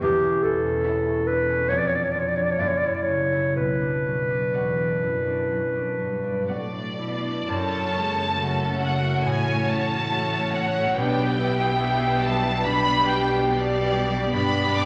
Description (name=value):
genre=classical, slow romantic movement for symphony orchestra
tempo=56-72 BPM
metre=4/4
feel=rubato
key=B minor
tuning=A4 = 440 Hz
part: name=clear clarinet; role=second line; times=0.0-6.5 s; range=G4 to D5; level=-25 LUFS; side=equal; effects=none
part: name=concert harp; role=arpeggios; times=0.0-14.9 s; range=E2 to B4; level=-30 LUFS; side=equal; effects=none
part: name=clear studio cello section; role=bass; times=0.0-14.9 s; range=E2 to B2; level=-35 LUFS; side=equal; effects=none
part: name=rich studio double bass section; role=bass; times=0.0-14.9 s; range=E1 to B1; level=-38 LUFS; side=equal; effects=none
part: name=rich studio violin section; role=melody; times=0.8-14.9 s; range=D5 to D6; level=-28 LUFS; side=equal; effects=none
part: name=rich studio violin section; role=second line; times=0.8-14.9 s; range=F#4 to E5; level=-31 LUFS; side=equal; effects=none
part: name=rich studio viola section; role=accompaniment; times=0.9-14.9 s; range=F#3 to E4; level=-32 LUFS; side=equal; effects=none
room=wet recital hall reverb, RT60 1.5 s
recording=none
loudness=-24 LUFS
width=mono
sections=0.0-7.5 A section; 7.5-14.9 B section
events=none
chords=0.0 Em6; 1.7 Fdim7; 2.6 F#7; 3.6 Bm; 7.5 F#m; 9.2 F#m/A; 11.0 G/B; 14.3 G